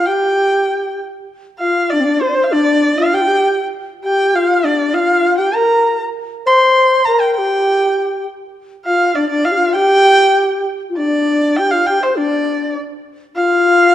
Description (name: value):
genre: chinese traditional, Chinese chamber ensemble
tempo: 100 BPM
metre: 2/4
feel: rubato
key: G yu mode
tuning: A4 = 440 Hz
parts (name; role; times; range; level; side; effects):
- rich erhu; melody; 0.0-13.9 s; C5 to C6; -15 LUFS; right 1 dB; none
- breathy bright low xiao; second line; 0.0-13.9 s; C4 to D5; -15 LUFS; left 2 dB; none
room: moderate concert hall reverb, RT60 1.8 s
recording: dark, warm production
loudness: -12 LUFS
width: side -12 dB against mid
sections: 0.0-1.3 A section; 1.3-11.0 B section; 11.0-13.9 A section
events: none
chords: none